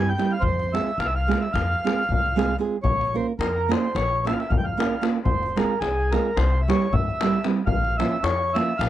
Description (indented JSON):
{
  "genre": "balkan folk, Balkan wedding band",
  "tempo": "223 BPM (eighths)",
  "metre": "9/8",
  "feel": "straight",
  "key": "unclear",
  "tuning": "A4 = 438 Hz",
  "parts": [
    { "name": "mellow accordion", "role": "melody", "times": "0.0-8.9 s", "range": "Ab4 to G5", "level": "-25 LUFS", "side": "right 1 dB", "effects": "none" },
    { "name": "nylon-string guitar", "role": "accompaniment", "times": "0.0-8.7 s", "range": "F3 to Bb4", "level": "-23 LUFS", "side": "right 5 dB", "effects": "none" },
    { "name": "upright bass", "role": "bass", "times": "0.0-8.9 s", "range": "F1 to G2", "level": "-26 LUFS", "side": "left 1 dB", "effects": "none" },
    { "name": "davul", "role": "percussion", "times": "0.2-8.9 s", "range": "none", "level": "-27 LUFS", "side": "left 4 dB", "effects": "none" }
  ],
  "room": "light reverb",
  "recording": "dry, close 1970s-style studio recording",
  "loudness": "-20 LUFS",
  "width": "side -12 dB against mid",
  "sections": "0.0-2.8 A section; 2.8-8.9 B section",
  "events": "none",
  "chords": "0.4 Fm; 2.8 Bbm; 5.3 Fm; 6.3 C; 7.7 Bbm"
}